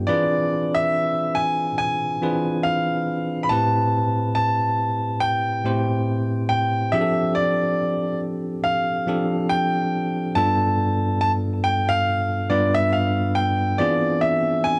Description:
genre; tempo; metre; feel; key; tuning
R&B; 70 BPM; 4/4; swing 58% on 16ths; A minor; A4 = 440 Hz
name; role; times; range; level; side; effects
bell-like tine electric piano; accompaniment; 0.0-14.8 s; G2 to C5; -25 LUFS; equal; cassette tape
clear grand piano; melody; 0.1-14.8 s; D5 to B5; -24 LUFS; equal; cassette tape
room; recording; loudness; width
light reverb; home recording on cassette; -22 LUFS; mono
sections
0.0-14.8 A section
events
none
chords
0.1 E7b9b13; 3.5 Am7; 6.9 F69; 10.4 G7; 13.8 E7b9b13

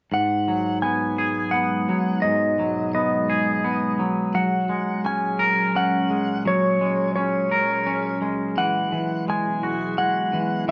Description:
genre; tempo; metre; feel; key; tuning
rock; 85 BPM; 3/4; straight; G# minor; A4 = 440 Hz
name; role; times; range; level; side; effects
clean lap steel guitar; melody; 0.1-10.7 s; C#5 to G#5; -26 LUFS; equal; none
glassy FM pad; sustained chords; 1.2-10.7 s; A#2 to G#4; -30 LUFS; equal; ensemble chorus, built-in reverb
twangy electric guitar; arpeggios; 0.1-10.7 s; G#2 to A#4; -26 LUFS; equal; none
room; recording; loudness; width
wet studio reverb, RT60 0.5 s; band playing live in one room, nothing above 7.7 kHz; -23 LUFS; mono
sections
0.1-10.7 A section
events
none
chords
0.1 G#m7; 4.3 F#add9; 8.6 Eadd9

